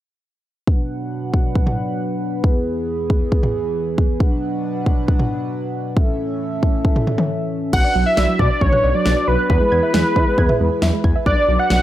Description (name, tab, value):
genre	synth-pop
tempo	136 BPM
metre	4/4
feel	straight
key	B dorian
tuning	A4 = 441 Hz
part	chorused pulse-width pad	sustained chords	0.7-11.8 s	E2 to F#5	-23 LUFS	equal	none
part	pop drum kit	drums	0.7-11.8 s	crash cymbal, kick drum, snare drum, toms	-18 LUFS	equal	none
part	wide unison lead	melody	7.7-11.8 s	B4 to F#5	-18 LUFS	equal	none
part	soft round pluck	arpeggios	7.7-11.8 s	F#3 to G#6	-24 LUFS	right 4 dB	chorus
part	smooth gliding synth bass	bass	7.7-11.8 s	B1 to E3	-20 LUFS	equal	none
room	light reverb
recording	none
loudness	-16 LUFS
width	side -13 dB against mid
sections	0.7-7.7 A section; 7.7-11.8 B section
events	break 7.3-7.7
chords	0.7 Bm; 2.4 E; 4.2 Bm; 6.0 A; 7.7 Bm; 9.5 E; 11.3 Bm